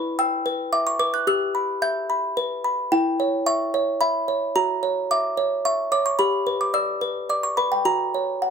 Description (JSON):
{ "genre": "classical, lullaby for music box", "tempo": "110 BPM", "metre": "3/4", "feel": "straight", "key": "unclear", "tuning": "A4 = 440 Hz", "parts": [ { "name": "music box", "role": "solo", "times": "0.0-8.5 s", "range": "E4 to G6", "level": "-20 LUFS", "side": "equal", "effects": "none" } ], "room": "moderate studio ambience, RT60 0.5 s", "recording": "none", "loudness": "-20 LUFS", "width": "side -6 dB against mid", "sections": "0.0-8.5 A section", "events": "none", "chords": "0.0 Em; 1.3 Em/G; 2.9 C#dim/E; 4.6 F#7; 6.2 G; 7.8 F#" }